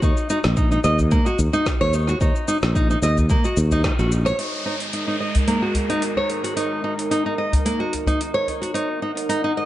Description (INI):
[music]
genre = organic downtempo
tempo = 110 BPM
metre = 4/4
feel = swing 54% on 16ths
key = unclear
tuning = A4 = 435 Hz
[part]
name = nylon-string guitar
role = arpeggios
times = 0.0-9.7 s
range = Bb3 to Eb5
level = -22 LUFS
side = equal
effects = low-pass filter, analog delay
[part]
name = sustaining fretless electric bass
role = bass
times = 0.0-4.3 s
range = Bb1 to Eb2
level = -20 LUFS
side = equal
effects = sidechain pumping
[part]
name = afro-pop drum kit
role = drums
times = 0.0-9.4 s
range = cabasa, hi-hat, snare drum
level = -30 LUFS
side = equal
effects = analog delay
[part]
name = electronic kick drum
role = drums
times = 0.0-4.0 s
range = none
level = -21 LUFS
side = equal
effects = none
[part]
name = udu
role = percussion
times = 1.0-8.2 s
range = none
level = -23 LUFS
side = equal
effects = analog delay
[part]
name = warm analog pad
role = sustained chords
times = 4.4-9.7 s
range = Ab3 to Gb5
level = -27 LUFS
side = right 2 dB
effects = chorus, sidechain pumping
[part]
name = downlifter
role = sound effects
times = 4.4-8.7 s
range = none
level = -32 LUFS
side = equal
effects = none
[sound]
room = moderate spring reverb, RT60 1.7 s, digital ambience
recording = echo-heavy mix, nothing above 10.5 kHz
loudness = -18 LUFS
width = side -14 dB against mid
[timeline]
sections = 0.0-4.4 A section; 4.4-9.7 B section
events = band accent 3.8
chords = 0.0 Eb5; 4.4 Ab5; 8.8 Ebm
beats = | 0.03 0.57 1.12 1.66 | 2.21 2.75 3.30 3.84 | 4.39 4.93 5.48 6.03 | 6.57 7.12 7.66 8.21 | 8.75 9.30